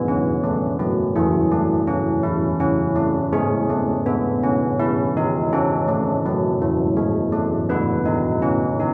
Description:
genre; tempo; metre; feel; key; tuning
classical, tune for church bells; 82 BPM; 3/4; straight; unclear; A4 = 441 Hz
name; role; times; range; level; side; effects
old church bells; solo; 0.0-8.9 s; E3 to B4; -20 LUFS; equal; none
room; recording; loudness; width
wet recital hall reverb, RT60 1.4 s; dark, warm production; -20 LUFS; mono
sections
0.0-8.9 A section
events
none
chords
0.0 C#m; 1.2 E; 3.3 E/G#; 5.5 A; 7.7 B

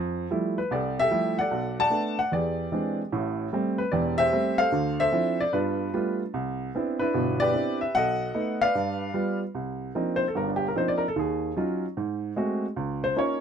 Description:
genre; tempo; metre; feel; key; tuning
solo jazz; 149 BPM; 4/4; swing 66% on 8ths; C minor from 9.6 s; A4 = 441 Hz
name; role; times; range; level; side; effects
clear upright piano; solo; 0.0-13.4 s; E1 to A5; -24 LUFS; equal; none
room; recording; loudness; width
little or no reverb; close, detailed microphones; -24 LUFS; side -7 dB against mid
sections
0.0-9.6 A section; 9.6-13.4 B section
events
upright piano solo 9.6-13.4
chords
0.0 Fmaj9; 1.5 Bm7; 2.3 E7alt; 3.1 Am7; 4.7 Dm9; 5.5 G9; 6.3 Cmaj9; 7.9 B7; 8.7 G7; 9.6 Cm11; 11.2 Ebm9; 12.0 Ab7b9; 12.8 Db69

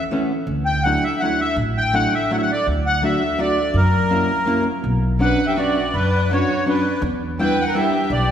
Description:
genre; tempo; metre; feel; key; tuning
musette waltz; 165 BPM; 3/4; swing 53% on 8ths, rubato; D major, B minor from 4.8 s; A4 = 440 Hz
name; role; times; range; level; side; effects
accordion; melody; 0.0-8.3 s; A#4 to G5; -21 LUFS; equal; light tremolo tuning
archtop guitar, miked and amplified; accompaniment; 0.1-7.9 s; E3 to F#4; -22 LUFS; equal; none
upright bass; bass; 0.5-8.3 s; A1 to F#2; -22 LUFS; equal; none
warm violin; second line; 5.2-8.3 s; D4 to B4; -25 LUFS; right 3 dB; none
room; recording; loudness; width
wet church reverb, RT60 2.6 s; recorded in a church or concert hall; -17 LUFS; side -9 dB against mid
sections
0.0-4.8 A section; 4.8-8.3 B section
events
none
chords
0.5 Dadd9; 2.7 D; 3.7 F#7; 4.8 Bmadd9; 7.0 Em7

